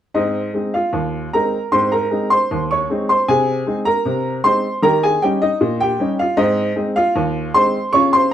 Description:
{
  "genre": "ragtime piano",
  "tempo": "77 BPM",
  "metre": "2/4",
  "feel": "straight",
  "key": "Ab major",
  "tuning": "A4 = 440 Hz",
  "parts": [
    { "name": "clear upright piano", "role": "solo", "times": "0.1-8.3 s", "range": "Eb2 to Db6", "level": "-15 LUFS", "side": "equal", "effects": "none" }
  ],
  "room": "moderate studio reverb, RT60 0.5 s",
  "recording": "band playing live in one room",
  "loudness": "-15 LUFS",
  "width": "side -10 dB against mid",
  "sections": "0.2-8.3 A section",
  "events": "none",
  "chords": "0.2 Ab; 3.3 Ab/C; 4.8 Eb7; 6.4 Ab"
}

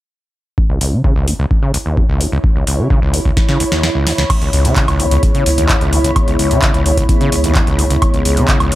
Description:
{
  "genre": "acid house",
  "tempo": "129 BPM",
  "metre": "4/4",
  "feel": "straight",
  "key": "C# minor",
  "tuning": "A4 = 440 Hz",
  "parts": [
    { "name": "electronic kick drum", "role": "drums", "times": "0.6-8.6 s", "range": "none", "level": "-15 LUFS", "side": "equal", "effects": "none" },
    { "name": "granular cloud pad", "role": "texture", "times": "1.9-8.8 s", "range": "E4 to B5", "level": "-21 LUFS", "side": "equal", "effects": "built-in reverb, sidechain pumping" },
    { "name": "overdriven acid bass", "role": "riff", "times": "0.7-8.8 s", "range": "C#2 to C#3", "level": "-17 LUFS", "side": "equal", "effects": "sidechain pumping" },
    { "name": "booming analog drum machine", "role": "drums", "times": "0.8-8.8 s", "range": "crash cymbal, handclaps, hi-hat, snare drum, woodblock", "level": "-19 LUFS", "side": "equal", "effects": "none" },
    { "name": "dark analog pad", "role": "sustained chords", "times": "4.3-8.8 s", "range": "B3 to C#5", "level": "-22 LUFS", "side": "left 1 dB", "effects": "chorus, sidechain pumping" },
    { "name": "warm sub bass", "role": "bass", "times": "4.5-8.8 s", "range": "C#2", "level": "-17 LUFS", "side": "equal", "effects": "sidechain pumping" }
  ],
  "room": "light reverb",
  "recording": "none",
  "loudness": "-12 LUFS",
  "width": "side -16 dB against mid",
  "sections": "0.6-4.3 A section; 4.3-8.8 B section",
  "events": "filter sweep on acid bass 0.6-4.3; drum fill 3.4-4.3; kick drops out 3.8-4.3",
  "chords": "0.6 C#m7"
}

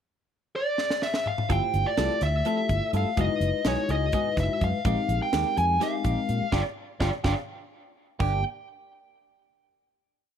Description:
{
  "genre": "electric jazz fusion",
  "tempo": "251 BPM (eighths)",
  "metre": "7/8",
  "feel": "straight",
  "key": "unclear",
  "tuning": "A4 = 440 Hz",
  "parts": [
    { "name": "dark smooth lead guitar", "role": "melody", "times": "0.6-8.4 s", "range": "C#5 to Ab5", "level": "-28 LUFS", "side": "equal", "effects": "overdrive" },
    { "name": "tight funk drum kit", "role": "drums", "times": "0.8-8.3 s", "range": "crash cymbal, hi-hat, kick drum, snare drum, toms", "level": "-31 LUFS", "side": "right 1 dB", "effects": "none" },
    { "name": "bell-like tine electric piano", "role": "accompaniment", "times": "1.5-8.4 s", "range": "G#3 to C5", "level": "-31 LUFS", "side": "left 6 dB", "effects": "phaser" },
    { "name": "clean electric guitar", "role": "stabs", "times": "1.5-8.4 s", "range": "E3 to A4", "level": "-35 LUFS", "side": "right 7 dB", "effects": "lush chorus" },
    { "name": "fretless electric bass", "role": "bass", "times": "1.5-8.4 s", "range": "F#1 to Bb2", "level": "-27 LUFS", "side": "right 1 dB", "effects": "none" }
  ],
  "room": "little or no reverb",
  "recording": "none",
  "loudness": "-24 LUFS",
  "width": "side -8 dB against mid",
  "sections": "0.0-1.5 pickup bar; 1.5-8.2 A section; 8.2-9.9 final chord",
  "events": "drum fill 0.8-1.5, 7.5-8.2; band accent 6.5-8.2",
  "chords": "0.0 N.C.; 1.5 G13sus4; 3.2 F#13sus4; 4.9 Bb13sus4; 6.5 G5; 8.2 Gm"
}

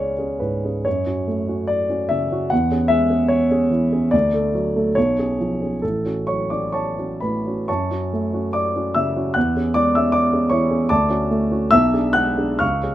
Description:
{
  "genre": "classical, romantic character piece for solo piano",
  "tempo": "62-80 BPM",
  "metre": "2/4",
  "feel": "rubato",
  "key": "F# minor",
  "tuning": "A4 = 440 Hz",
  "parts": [
    { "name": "warm grand piano", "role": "solo", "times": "0.0-12.9 s", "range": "A1 to F#6", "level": "-17 LUFS", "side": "equal", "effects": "none" }
  ],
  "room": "light reverb",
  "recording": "none",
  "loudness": "-17 LUFS",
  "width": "side -13 dB against mid",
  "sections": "0.0-7.7 A section; 7.7-12.9 A section",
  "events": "none",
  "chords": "0.0 C#5; 0.9 F#m; 2.5 C#m/E; 4.1 D; 5.0 C#7/B; 5.8 F#m/A; 7.7 F#m; 9.4 C#m/E; 10.9 Dmaj7; 11.7 G#dim/B"
}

